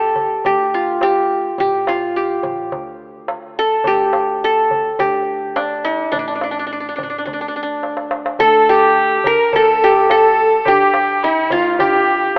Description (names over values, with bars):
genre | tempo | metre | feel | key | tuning
Arabic maqam ensemble | 106 BPM | 4/4 | straight | D maqam bayati | A4 = 441 Hz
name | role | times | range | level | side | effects
qanun | melody | 0.0-12.4 s | D4 to Bb4 | -17 LUFS | equal | none
upright bass | bass | 0.0-12.4 s | A1 to D3 | -36 LUFS | equal | none
darbuka | percussion | 0.2-12.4 s | none | -28 LUFS | equal | none
rich violin | second line | 8.4-12.4 s | E4-43c to Bb4 | -19 LUFS | equal | none
room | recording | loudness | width
moderate lush hall reverb, RT60 2.4 s | rough home demo mix, telephone sound | -16 LUFS | mono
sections
0.0-8.4 A section; 8.4-12.4 B section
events
drum fill 7.8-8.4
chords
none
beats
0.45 1.02 | 1.59 2.16 2.72 3.29 | 3.86 4.43 5.00 5.56 | 6.13 6.70 7.26 7.83 | 8.40 8.97 9.53 10.10 | 10.67 11.23 11.80 12.36